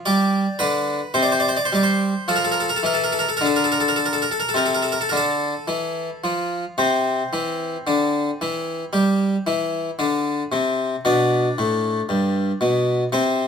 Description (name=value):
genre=classical, baroque-style suite movement for harpsichord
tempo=52-58 BPM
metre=4/4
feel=rubato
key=F major, C major from 6.8 s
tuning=A4 = 439 Hz
part: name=harpsichord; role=solo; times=0.1-13.5 s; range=G2 to D5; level=-18 LUFS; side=left 1 dB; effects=none
room=moderate stone room reverb, RT60 1.4 s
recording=none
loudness=-19 LUFS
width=side -6 dB against mid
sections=0.0-6.8 A section; 6.8-13.5 A section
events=none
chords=0.1 G; 1.1 C5; 2.3 F; 6.8 C; 11.0 G